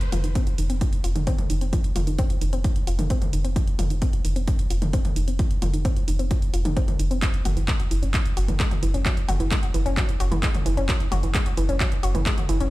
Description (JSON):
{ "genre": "driving peak-time techno", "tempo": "131 BPM", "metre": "4/4", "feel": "straight", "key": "F phrygian", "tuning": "A4 = 437 Hz", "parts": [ { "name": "techno drum kit", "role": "drums", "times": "0.0-12.7 s", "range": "handclaps, hi-hat, toms", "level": "-30 LUFS", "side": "equal", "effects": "sidechain pumping on hats, sidechain pumping on toms" }, { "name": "analog pluck", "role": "riff", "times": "0.1-12.7 s", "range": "Eb3 to Gb4", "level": "-30 LUFS", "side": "equal", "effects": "chorus, sidechain pumping, digital delay" }, { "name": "warm sub bass", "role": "bass", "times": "0.1-12.7 s", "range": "F1 to Gb1", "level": "-24 LUFS", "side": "equal", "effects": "overdrive, sidechain pumping, low-pass filter" }, { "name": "electronic kick drum", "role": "drums", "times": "0.4-12.4 s", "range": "none", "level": "-24 LUFS", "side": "equal", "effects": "none" } ], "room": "little or no reverb", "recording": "played on a big sound system in a bare room, stone room reverb", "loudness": "-21 LUFS", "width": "side -18 dB against mid", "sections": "0.0-12.7 A section", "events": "filter sweep on synth arpeggio sound 0.0-12.7", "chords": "0.0 F5; 7.2 Gb5", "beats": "0.35 0.81 1.27 | 1.73 2.19 2.64 3.10 | 3.56 4.02 4.48 4.93 | 5.39 5.85 6.31 6.77 | 7.22 7.68 8.14 8.60 | 9.06 9.51 9.97 10.43 | 10.89 11.35 11.80 12.26" }